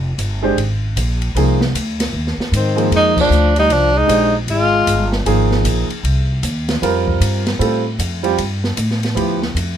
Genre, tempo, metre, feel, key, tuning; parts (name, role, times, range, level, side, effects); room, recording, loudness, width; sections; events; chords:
modal jazz; 154 BPM; 4/4; swing 64% on 8ths; F dorian; A4 = 440 Hz
upright bass; bass; 0.0-9.8 s; F1 to A2; -18 LUFS; equal
open jazz drum kit; drums; 0.2-9.7 s; crash cymbal, hi-hat, kick drum, ride cymbal, snare drum; -24 LUFS; equal
warm concert grand piano; accompaniment; 0.4-9.4 s; F3 to C5; -18 LUFS; right 3 dB
breathy trombone; second line; 2.5-5.1 s; Eb3 to Ab3; -20 LUFS; left 6 dB
warm tenor saxophone; melody; 2.6-5.1 s; C4 to F4; -15 LUFS; right 1 dB
little or no reverb; close, detailed microphones; -14 LUFS; side -9 dB against mid
0.0-9.2 A section
band accent 3.1
0.0 Ab/F; 2.9 Fm7; 6.0 Cmadd11; 7.6 Fadd9; 9.2 Dmadd9